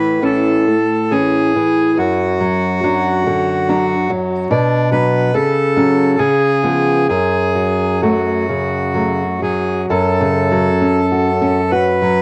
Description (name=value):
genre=romantic duo for bandoneon and classical guitar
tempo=63-73 BPM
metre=3/4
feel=rubato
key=F# minor from 4.5 s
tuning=A4 = 440 Hz
part: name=bandoneon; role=melody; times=0.0-12.2 s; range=D4 to B4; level=-20 LUFS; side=equal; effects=cassette tape, tape echo
part: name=nylon-string guitar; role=accompaniment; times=0.0-12.2 s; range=F#2 to F#4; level=-17 LUFS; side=equal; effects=none
room=moderate spring reverb, RT60 1.1 s, small room ambience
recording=home recording on cassette, vinyl crackle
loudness=-16 LUFS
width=mono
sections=0.0-9.9 A section; 9.9-12.2 B section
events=none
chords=0.0 A; 2.0 D/F#; 4.5 Bm; 5.4 F#m/C#; 6.2 C#7; 7.1 F#m